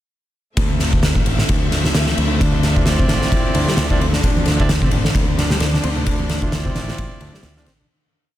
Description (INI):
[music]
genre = breakbeat, breaks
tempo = 131 BPM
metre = 4/4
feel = swing 57% on 16ths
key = D minor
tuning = A4 = 440 Hz
[part]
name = clear studio string section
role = sustained chords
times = 0.6-7.9 s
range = D3 to E5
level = -26 LUFS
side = left 1 dB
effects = vintage 12-bit sampler grit, sidechain pumping
[part]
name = modern bright picked electric bass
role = bass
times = 0.6-7.8 s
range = A1 to D2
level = -21 LUFS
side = equal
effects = none
[part]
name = oversized low-tuned drum kit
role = drums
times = 0.6-7.8 s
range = kick drum, ride cymbal, snare drum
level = -18 LUFS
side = equal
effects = none
[part]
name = combo organ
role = riff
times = 2.4-7.9 s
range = C3 to C4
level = -24 LUFS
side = left 1 dB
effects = tube saturation, digital delay
[part]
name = bright horn section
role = stabs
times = 2.8-7.7 s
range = C4 to D5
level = -26 LUFS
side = right 2 dB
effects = vintage 12-bit sampler grit, digital delay
[part]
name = congas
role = percussion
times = 4.4-7.9 s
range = none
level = -29 LUFS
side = right 2 dB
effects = none
[sound]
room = light reverb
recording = none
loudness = -15 LUFS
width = side -13 dB against mid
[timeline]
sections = 0.6-7.9 groove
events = fade-out 5.5-7.9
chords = 0.6 Dm9